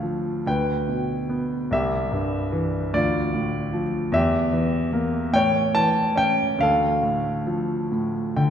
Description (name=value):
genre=classical, lyrical solo piano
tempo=44-51 BPM (dotted quarters)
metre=6/8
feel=rubato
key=D minor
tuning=A4 = 440 Hz
part: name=warm grand piano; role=solo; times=0.0-8.5 s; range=C2 to A5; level=-20 LUFS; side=equal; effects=none
room=wet concert hall reverb, RT60 2.3 s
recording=recorded in a church or concert hall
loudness=-20 LUFS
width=side -8 dB against mid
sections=0.0-8.5 A section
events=grand piano fill 7.9-8.5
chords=0.5 G/D; 1.7 C; 2.9 Dm; 4.1 Edim; 5.3 A; 6.6 Dm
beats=0.46 | 1.72 2.94 | 4.15 5.35 | 6.60 7.92